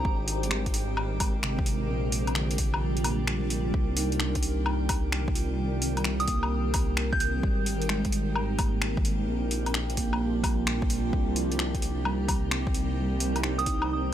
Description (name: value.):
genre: future garage.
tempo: 130 BPM.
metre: 4/4.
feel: swing 66% on 16ths.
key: C minor.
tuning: A4 = 440 Hz.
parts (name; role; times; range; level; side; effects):
soft synth bell; melody; 0.0, 6.2-7.3, 13.6-13.8 s; Eb6 to G6; -34 LUFS; right 2 dB; chorus, tape echo.
mellow tine electric piano; accompaniment; 0.0-14.1 s; C3 to F4; -34 LUFS; right 4 dB; slow stereo tremolo, sidechain pumping, tape echo.
granular cloud pad; sustained chords; 0.0-14.1 s; Eb3 to C5; -34 LUFS; equal; built-in reverb, sidechain pumping.
dark detuned saw bass; bass; 0.0-14.1 s; Ab1 to C2; -30 LUFS; equal; sidechain pumping.
electronic kick drum; drums; 0.0-13.8 s; none; -29 LUFS; equal; overdrive.
drifting glass-harmonics texture; texture; 0.0-14.1 s; G4 to G5; -39 LUFS; right 3 dB; chorus, built-in reverb.
deep house drum kit; drums; 0.3-13.9 s; finger snaps, hi-hat, woodblock; -32 LUFS; left 2 dB; overdrive.
room: digital ambience.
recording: none.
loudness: -25 LUFS.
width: side -11 dB against mid.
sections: 0.0-14.1 A section.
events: kick drops out 2.8-3.7.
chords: 0.0 Abadd9; 1.9 Bb6; 3.7 Cm7; 7.4 Abadd9; 9.3 Bb6; 11.1 Cm7.